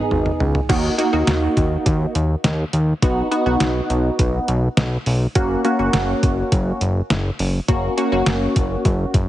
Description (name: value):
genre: synth-pop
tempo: 103 BPM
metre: 4/4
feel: straight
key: unclear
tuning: A4 = 440 Hz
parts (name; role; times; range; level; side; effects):
- funky polysynth comp; accompaniment; 0.0-9.1 s; A#3 to G#4; -20 LUFS; equal; chorus, tremolo
- fat analog bass; bass; 0.0-9.3 s; F#1 to D#2; -20 LUFS; equal; none
- detuned 8-bit digital drum machine; drums; 0.1-9.3 s; crash cymbal, hi-hat, kick drum, snare drum, toms; -21 LUFS; equal; none
room: light reverb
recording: heavily compressed radio sound, multiband compression, nothing above 10.9 kHz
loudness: -16 LUFS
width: side -14 dB against mid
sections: 0.7-9.3 A section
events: drum fill 0.0-0.7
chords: 0.0 G#m; 0.7 D#m; 3.0 B; 5.4 F#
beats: 0.11 | 0.69 1.28 1.86 2.44 | 3.02 3.61 4.19 4.77 | 5.36 5.94 6.52 7.10 | 7.68 8.27 8.85